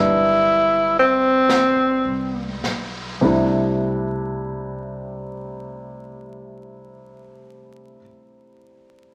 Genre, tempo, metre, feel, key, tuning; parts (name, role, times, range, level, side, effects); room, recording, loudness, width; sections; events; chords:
jazz; 33-40 BPM; 4/4; swing 68% on 8ths; C major; A4 = 440 Hz
mellow tenor saxophone; melody; 0.0-2.6 s; C4 to E4; -18 LUFS; equal
dark concert grand piano; accompaniment; 0.0-9.1 s; C3 to B4; -26 LUFS; equal
upright bass; bass; 0.0-7.9 s; G1 to C2; -33 LUFS; equal
vintage brush drum kit; drums; 1.5-4.1 s; brushed snare drum, hi-hat, snare drum; -32 LUFS; equal
moderate large studio reverb, RT60 1.2 s; vinyl crackle; -19 LUFS; mono
0.0-3.2 A section; 3.2-9.1 B section
slowing down 0.0-3.2; tenor saxophone solo 0.0-3.2
0.0 Cadd9; 3.2 C69